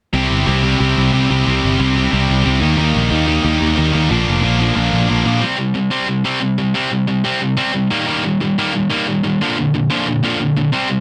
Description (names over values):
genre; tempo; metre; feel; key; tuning
punk; 181 BPM; 4/4; straight; unclear; A4 = 440 Hz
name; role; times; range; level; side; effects
distorted electric guitar; riff; 0.1-11.0 s; Bb2 to G4; -18 LUFS; equal; overdrive
distorted electric guitar; riff; 0.1-5.4 s; Bb2 to Eb4; -21 LUFS; equal; distortion
picked electric bass; bass; 0.1-5.4 s; F1 to Eb2; -19 LUFS; equal; none
room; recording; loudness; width
light reverb; none; -16 LUFS; mono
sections
0.1-5.4 A section; 5.4-11.0 B section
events
none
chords
0.1 C; 2.6 Eb; 4.1 Bb; 5.4 C5; 7.9 Eb; 9.4 Bb